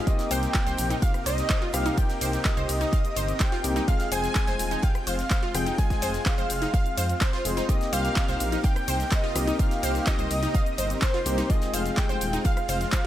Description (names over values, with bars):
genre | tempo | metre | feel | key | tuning
progressive house | 126 BPM | 4/4 | straight | F minor | A4 = 442 Hz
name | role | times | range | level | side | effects
wide unison lead | melody | 0.0-13.1 s | C5 to Ab5 | -31 LUFS | right 1 dB | digital delay
airy dreamy lead | second line | 0.0-13.1 s | C5 to Ab5 | -37 LUFS | equal | chorus, sidechain pumping, digital delay
supersaw pad | sustained chords | 0.0-13.1 s | C3 to Bb4 | -36 LUFS | right 1 dB | sidechain pumping
wide unison pluck | arpeggios | 0.0-13.1 s | Eb4 to F5 | -34 LUFS | equal | sidechain pumping, digital delay
dark baby grand piano | stabs | 0.0-13.1 s | Ab3 to Ab4 | -32 LUFS | left 4 dB | vintage 12-bit sampler grit, sidechain pumping, digital delay
electronic kick drum | drums | 0.1-13.0 s | none | -25 LUFS | equal | none
house drum kit | drums | 0.1-13.1 s | handclaps, hi-hat, rim click, shaker | -32 LUFS | left 1 dB | none
modern studio drum kit | drums | 0.1-13.0 s | hi-hat, snare drum | -43 LUFS | right 3 dB | none
dark detuned saw bass | bass | 0.3-12.9 s | Eb1 to F2 | -29 LUFS | equal | sidechain pumping
room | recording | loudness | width
small room ambience | none | -23 LUFS | side -12 dB against mid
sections
0.0-13.1 A section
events
none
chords
0.1 Cm7; 3.9 Fm; 7.7 Cm7; 11.5 Fm